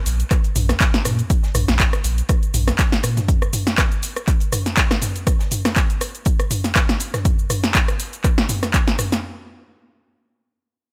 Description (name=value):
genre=acid house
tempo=121 BPM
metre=4/4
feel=swing 55% on 16ths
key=unclear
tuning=A4 = 440 Hz
part: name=warm sub bass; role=bass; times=0.1-3.2 s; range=Bb1 to Bb2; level=-22 LUFS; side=equal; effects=tube saturation, sidechain pumping
part: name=compact cocktail drum kit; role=drums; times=0.1-7.2 s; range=hi-hat, snare drum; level=-40 LUFS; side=equal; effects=none
part: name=punchy analog drum machine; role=drums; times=0.1-9.2 s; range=handclaps, hi-hat, rim click, shaker, snare drum, toms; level=-23 LUFS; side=equal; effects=overdrive
part: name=electronic kick drum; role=drums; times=0.3-8.8 s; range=none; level=-21 LUFS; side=equal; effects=overdrive
room=small room ambience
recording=none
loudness=-19 LUFS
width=mono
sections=0.0-9.2 A section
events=drop 0.0-9.2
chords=none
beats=0.31 0.81 | 1.30 1.80 2.29 2.79 | 3.28 3.78 4.28 4.77 | 5.27 5.76 6.26 6.75 | 7.25 7.75 8.24 8.74